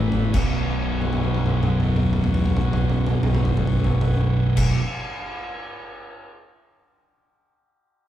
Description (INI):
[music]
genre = stoner and doom metal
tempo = 54 BPM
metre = 4/4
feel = swing 60% on 8ths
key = unclear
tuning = A4 = 439 Hz
[part]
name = tonewheel organ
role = sustained chords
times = 0.0-4.7 s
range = A3 to C#5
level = -33 LUFS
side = left 1 dB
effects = overdrive, slow rotary speaker
[part]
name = thick fuzz guitar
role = riff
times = 0.0-4.8 s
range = B1 to A3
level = -26 LUFS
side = left 6 dB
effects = distortion
[part]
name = thick fuzz guitar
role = riff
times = 0.0-4.8 s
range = B1 to A3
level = -23 LUFS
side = right 3 dB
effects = distortion
[part]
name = growling fingered electric bass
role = bass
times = 0.0-4.7 s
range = B0 to A1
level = -27 LUFS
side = equal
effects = overdrive
[part]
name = oversized low-tuned drum kit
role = drums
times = 0.1-6.3 s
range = crash cymbal, kick drum, toms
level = -26 LUFS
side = equal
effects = none
[sound]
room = light reverb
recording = band playing live in one room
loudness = -19 LUFS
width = side -12 dB against mid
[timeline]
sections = 0.3-4.8 A section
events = drum fill 0.0-0.3, 0.9-4.5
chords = 0.3 B5